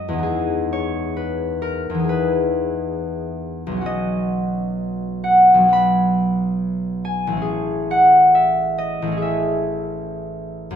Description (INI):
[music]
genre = classical, solo harp piece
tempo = 58-72 BPM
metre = 4/4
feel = rubato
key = unclear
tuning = A4 = 440 Hz
[part]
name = concert harp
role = solo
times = 0.0-10.8 s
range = A1 to B5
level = -17 LUFS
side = equal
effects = none
[sound]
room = little or no reverb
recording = close, detailed microphones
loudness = -17 LUFS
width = side -9 dB against mid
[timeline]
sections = 0.0-10.8 A section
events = none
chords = 0.3 Emaj7; 3.9 Badd9; 7.5 Amaj7